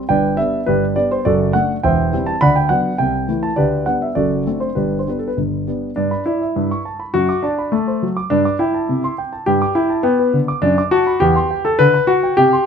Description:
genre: classical-period piano sonatina.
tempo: 103 BPM.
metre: 2/4.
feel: straight.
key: G major.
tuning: A4 = 440 Hz.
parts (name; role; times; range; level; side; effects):
warm concert grand piano; solo; 0.0-12.7 s; E1 to D6; -15 LUFS; equal; none.
room: light reverb.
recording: close, detailed microphones.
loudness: -15 LUFS.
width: side -7 dB against mid.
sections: 0.0-6.0 A section; 6.0-12.7 A section.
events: none.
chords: 0.1 G; 1.3 D/F#; 1.8 C/E; 2.4 Bm/D; 3.0 Am/C; 3.6 G/D; 4.2 D7/F#; 4.8 G; 6.6 A7/G; 7.2 D7/F#; 8.3 G5; 8.9 C; 9.5 G; 10.6 D/F#; 11.2 C/E; 11.8 Bm/D.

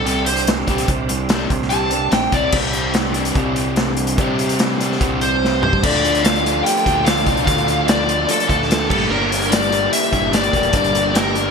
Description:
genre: indie rock.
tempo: 146 BPM.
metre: 4/4.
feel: straight.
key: unclear.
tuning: A4 = 440 Hz.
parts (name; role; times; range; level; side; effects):
dark smooth lead guitar; melody; 0.0-2.5, 5.2-11.5 s; A4 to A5; -20 LUFS; left 2 dB; overdrive, ping-pong delay.
tonewheel organ; sustained chords; 0.0-11.5 s; F4 to D6; -31 LUFS; equal; chorus vibrato, slow rotary speaker.
crunchy overdriven guitar; riff; 0.0-11.5 s; G2 to G4; -23 LUFS; right 9 dB; wide subtle chorus, ping-pong delay.
growling fingered electric bass; bass; 0.0-11.5 s; E1 to C3; -25 LUFS; equal; overdrive.
raw garage guitar; riff; 0.1-11.5 s; G2 to D4; -23 LUFS; left 7 dB; overdrive, analog chorus.
vintage drum kit; drums; 0.1-11.4 s; crash cymbal, hi-hat, kick drum, snare drum, toms; -20 LUFS; equal; gated reverb.
bell-like tine electric piano; second line; 5.2-11.5 s; A3 to G4; -32 LUFS; left 2 dB; none.
room: moderate plate reverb, RT60 1.2 s, studio reverb.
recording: bright 1980s-style digital production.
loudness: -15 LUFS.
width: side -5 dB against mid.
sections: 0.0-2.5 A section; 2.5-5.8 B section; 5.8-11.5 C section.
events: lead electric guitar solo 0.0-2.5; drum fill 5.4-5.8.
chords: 0.0 Csus2; 5.8 Dm; 8.9 Gm.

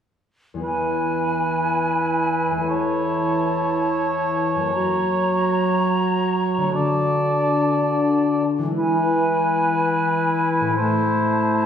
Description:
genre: cinematic.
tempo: 118 BPM (dotted quarters).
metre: 12/8.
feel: straight.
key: E mixolydian.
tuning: A4 = 437 Hz.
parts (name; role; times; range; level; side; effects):
concert harp; arpeggios; 0.5-11.7 s; E2 to D5; -28 LUFS; left 1 dB; none.
mellow clarinet; second line; 0.6-11.7 s; E4 to F#4; -26 LUFS; left 1 dB; none.
mellow cor anglais; second line; 0.6-11.7 s; B4 to D5; -24 LUFS; right 2 dB; none.
silver concert flute; second line; 0.6-11.7 s; G#5 to A#5; -25 LUFS; equal; none.
dark French horn section; sustained chords; 0.6-11.7 s; D3 to A3; -24 LUFS; left 2 dB; none.
room: wet recital hall reverb, RT60 1.4 s.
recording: recorded in a church or concert hall.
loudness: -18 LUFS.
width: side -8 dB against mid.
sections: 0.6-11.7 A section.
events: build-up 0.6-11.7.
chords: 0.6 E; 2.7 A/E; 4.7 F#; 6.8 D; 8.8 E; 10.8 Am.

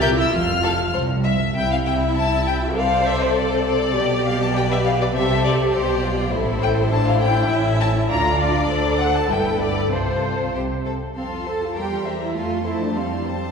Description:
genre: quick classical-period movement for string orchestra.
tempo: 100 BPM.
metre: 2/4.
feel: straight.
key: C major, F major from 6.3 s.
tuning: A4 = 440 Hz.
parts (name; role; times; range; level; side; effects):
rich chamber violin section; melody; 0.0-13.5 s; C5 to G6; -24 LUFS; left 4 dB; none.
clear chamber violin section; second line; 0.0-13.5 s; C#4 to A5; -25 LUFS; left 3 dB; none.
warm studio viola section; accompaniment; 0.0-13.5 s; G3 to C5; -24 LUFS; equal; none.
rich chamber cello section; bass; 0.0-13.5 s; C2 to A4; -25 LUFS; right 2 dB; none.
rich chamber double bass section; bass; 0.0-13.5 s; F1 to F2; -26 LUFS; right 2 dB; none.
room: wet concert hall reverb, RT60 2.1 s.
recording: heard from further back in the room.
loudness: -18 LUFS.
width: side -6 dB against mid.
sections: 0.0-1.6 A section; 1.6-11.2 B section; 11.2-13.5 C section.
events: none.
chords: 0.3 F5; 1.6 C; 2.8 D5/C; 4.0 G/B; 5.1 C5; 6.3 Am; 8.1 Dm; 8.7 D5; 9.3 G; 9.9 F/C; 11.2 F; 11.8 C7/E; 12.4 F.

